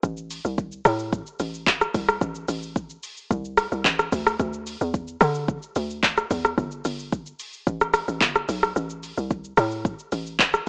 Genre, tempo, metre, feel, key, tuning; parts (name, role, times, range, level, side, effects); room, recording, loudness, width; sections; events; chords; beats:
amapiano; 110 BPM; 4/4; straight; A minor; A4 = 439 Hz
hollow log drum bass; bass; 0.0-10.6 s; G1 to D3; -27 LUFS; equal
deep house drum kit; drums; 0.0-10.7 s; handclaps, hi-hat, kick drum, rim click, shaker; -22 LUFS; equal
light reverb, digital ambience; worn, warbling old tape, cassette tape, warbly pitch drift, small speaker sound; -22 LUFS; side -32 dB against mid
0.0-10.7 A section
break 8.8-9.3
| 0.03 0.58 1.12 1.67 | 2.21 2.76 3.31 3.85 | 4.40 4.94 5.49 6.03 | 6.58 7.12 7.67 8.21 | 8.76 9.31 9.85 10.40